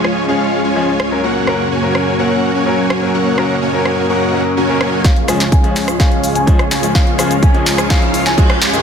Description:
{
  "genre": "EDM, festival progressive house",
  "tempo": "126 BPM",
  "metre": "4/4",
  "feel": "straight",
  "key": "Db major",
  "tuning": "A4 = 440 Hz",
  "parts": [
    { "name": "clear concert grand piano", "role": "accompaniment", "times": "0.0-8.8 s", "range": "Ab2 to Bb4", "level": "-20 LUFS", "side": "left 2 dB", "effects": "sidechain pumping, ping-pong delay" },
    { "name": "lush unison pad", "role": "sustained chords", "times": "0.0-8.8 s", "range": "Db2 to Eb5", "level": "-22 LUFS", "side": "equal", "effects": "chorus, sidechain pumping" },
    { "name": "dense compressed supersaw", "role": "riff", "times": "0.0-8.8 s", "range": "Ab3 to Ab5", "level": "-17 LUFS", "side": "equal", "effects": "sidechain pumping, low-pass filter, ping-pong delay" },
    { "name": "house drum kit", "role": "drums", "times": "0.0-8.8 s", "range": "cabasa, hi-hat, rim click, snare drum", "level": "-20 LUFS", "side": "equal", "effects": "high-pass filter on snare, high-pass filter on hats, high-pass filter on perc" },
    { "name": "swell and riser", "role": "sound effects", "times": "4.3-8.8 s", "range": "none", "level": "-23 LUFS", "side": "equal", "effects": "none" },
    { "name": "warm concert grand piano", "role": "arpeggios", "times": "5.0-8.8 s", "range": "F5 to Ab5", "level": "-23 LUFS", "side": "left 2 dB", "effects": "sidechain pumping, low-pass filter, ping-pong delay" },
    { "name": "electronic kick drum", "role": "drums", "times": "5.0-8.5 s", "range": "none", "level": "-12 LUFS", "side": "equal", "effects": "none" }
  ],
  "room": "moderate lush hall reverb, RT60 2.3 s",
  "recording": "none",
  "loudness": "-12 LUFS",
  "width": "side -7 dB against mid",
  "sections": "0.0-5.0 A section; 5.0-8.8 B section",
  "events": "swell 4.3-5.0; build-up 5.0-8.8; drum fill 5.0-8.8; filter sweep on supersaw synth 5.0-8.8; filter sweep on grand piano 5.0-8.8; riser 6.6-8.8",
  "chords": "0.0 Db; 1.2 Gb; 5.0 Db",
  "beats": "0.28 0.76 | 1.24 1.71 2.19 2.66 | 3.14 3.62 4.09 4.57 | 5.04 5.52 6.00 6.47 | 6.95 7.43 7.90 8.38"
}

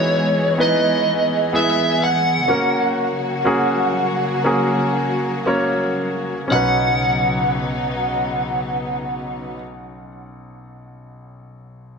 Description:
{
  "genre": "pop",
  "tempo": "57-64 BPM",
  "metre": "4/4",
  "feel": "straight",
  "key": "B major",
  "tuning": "A4 = 440 Hz",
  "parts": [
    { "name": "lead guitar through a small cranked amp", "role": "melody", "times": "0.0-9.6 s", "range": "C#5 to F#5", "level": "-20 LUFS", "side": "right 1 dB", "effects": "overdrive, tape echo" },
    { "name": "bright concert grand piano", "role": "accompaniment", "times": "0.0-12.0 s", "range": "B1 to C#5", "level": "-22 LUFS", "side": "equal", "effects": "none" },
    { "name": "warm studio string section", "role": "sustained chords", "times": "0.0-9.6 s", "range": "C#3 to G#4", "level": "-24 LUFS", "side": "left 2 dB", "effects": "none" }
  ],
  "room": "moderate lush hall reverb, RT60 1.8 s, small room ambience",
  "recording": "none",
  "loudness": "-17 LUFS",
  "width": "side -5 dB against mid",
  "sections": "0.0-6.5 A section; 6.5-10.8 B section",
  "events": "slowing down 0.0-6.5",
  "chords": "0.0 Emaj7; 2.5 F#; 6.5 Badd9",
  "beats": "0.58 1.53 | 2.48 3.46 4.45 5.47 | 6.51 7.58 8.63 9.70"
}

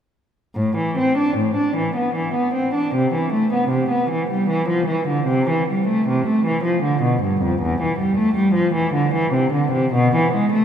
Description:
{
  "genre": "classical, baroque-style suite movement for unaccompanied cello",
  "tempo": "77 BPM",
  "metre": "3/4",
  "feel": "rubato",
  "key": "A minor",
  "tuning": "A4 = 439 Hz",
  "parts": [
    { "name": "warm cello", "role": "solo", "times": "0.6-10.6 s", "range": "E2 to D4", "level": "-17 LUFS", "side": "equal", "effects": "none" }
  ],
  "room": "wet cathedral reverb, RT60 4.5 s",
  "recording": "minimal, uncompressed stereo recording",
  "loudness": "-17 LUFS",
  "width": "side -8 dB against mid",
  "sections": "0.6-10.6 A section",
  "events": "none",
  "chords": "none",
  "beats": "| 0.55 1.38 2.15 | 2.93 3.71 4.49 | 5.29 6.08 6.84 | 7.61 8.37 9.13 | 9.93"
}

